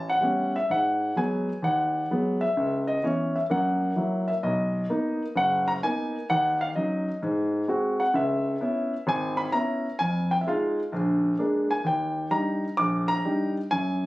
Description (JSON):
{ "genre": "jazz", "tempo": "129 BPM", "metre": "4/4", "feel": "swing 66% on 8ths", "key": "G# minor", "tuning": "A4 = 440 Hz", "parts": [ { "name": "warm grand piano", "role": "solo", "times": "0.0-14.1 s", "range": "F#1 to D6", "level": "-23 LUFS", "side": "equal", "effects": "none" } ], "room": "light reverb", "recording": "recorded on a phone in the room, studio ambience", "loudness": "-23 LUFS", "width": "side -18 dB against mid", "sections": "0.0-4.4 A section; 4.4-14.1 B section", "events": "none", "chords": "0.0 A9; 0.7 G#m7; 2.6 C#m7; 3.5 F#7; 4.4 Bmaj7; 6.3 D#m7; 7.2 G#7; 8.1 C#m7; 10.0 Fm7; 10.9 A#7; 11.8 D#maj7" }